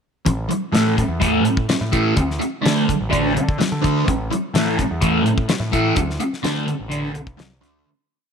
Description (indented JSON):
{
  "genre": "psychedelic rock",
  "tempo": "127 BPM",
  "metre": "4/4",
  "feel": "straight",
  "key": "unclear",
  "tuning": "A4 = 440 Hz",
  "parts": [
    { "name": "thick fuzz guitar", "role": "riff", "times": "0.3-7.8 s", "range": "A2 to D4", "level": "-19 LUFS", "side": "right 1 dB", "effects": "distortion, phaser" },
    { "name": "growling picked electric bass", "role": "bass", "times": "0.3-7.8 s", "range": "A1 to D3", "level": "-24 LUFS", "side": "equal", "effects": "overdrive" },
    { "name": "damped 70s drum kit", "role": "drums", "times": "0.3-7.7 s", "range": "hi-hat, kick drum, snare drum", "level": "-22 LUFS", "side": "left 2 dB", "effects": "none" }
  ],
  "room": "light reverb",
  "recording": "1960s-style stereo",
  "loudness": "-17 LUFS",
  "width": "side -6 dB against mid",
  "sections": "0.3-7.8 groove",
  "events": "fade-out 6.0-7.8",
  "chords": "0.3 A5; 2.2 D5; 4.1 A5; 6.0 D5",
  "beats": "| 0.25 0.73 1.21 1.69 | 2.16 2.64 3.11 3.59 | 4.06 4.54 5.01 5.48 | 5.96 6.43 6.90 7.37"
}